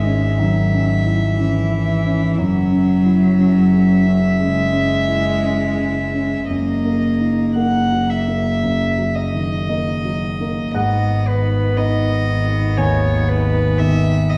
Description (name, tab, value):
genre	neoclassical piano and strings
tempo	56-61 BPM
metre	4/4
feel	rubato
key	G# minor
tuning	A4 = 440 Hz
part	rich violin	melody	0.0-14.4 s	B4 to F#5	-26 LUFS	equal	none
part	warm cello	second line	0.0-14.4 s	D#3 to A#3	-22 LUFS	equal	none
part	dark concert grand piano	accompaniment	0.0-14.4 s	D#2 to G#5	-23 LUFS	equal	none
part	warm double bass	bass	0.0-14.4 s	F#1 to G#1	-24 LUFS	equal	none
part	warm viola	accompaniment	10.8-14.4 s	B3	-29 LUFS	equal	none
room	wet recital hall reverb, RT60 1.4 s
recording	recorded in a church or concert hall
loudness	-17 LUFS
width	mono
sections	0.0-10.8 A section; 10.8-14.4 B section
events	none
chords	0.0 C#madd9/G#; 2.4 F#5; 6.5 D#m/F#; 10.8 G#m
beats	0.40 1.39 | 2.38 3.39 4.40 5.43 | 6.50 7.57 8.64 9.69 | 10.75 11.78 12.79 13.80